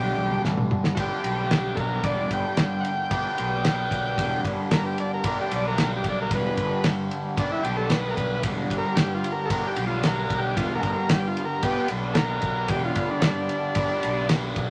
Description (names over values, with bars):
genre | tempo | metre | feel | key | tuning
psychedelic rock | 113 BPM | 4/4 | straight | G major | A4 = 435 Hz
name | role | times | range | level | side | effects
overdriven combo organ | melody | 0.0-14.3 s | B3 to G5 | -30 LUFS | equal | none
biting overdriven guitar | riff | 0.0-14.7 s | G2 to G4 | -31 LUFS | equal | phaser
fuzz fingered electric bass | bass | 0.0-14.7 s | E1 to G2 | -33 LUFS | equal | overdrive
congas | percussion | 0.2-0.8 s | none | -40 LUFS | equal | none
damped 70s drum kit | drums | 0.4-14.7 s | kick drum, ride cymbal, snare drum, toms | -30 LUFS | equal | none
room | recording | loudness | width
moderate studio ambience, RT60 0.5 s | none | -25 LUFS | mono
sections
1.0-14.7 A section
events
drum fill 0.5-1.0; transistor combo organ solo 1.0-14.7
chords
0.0 G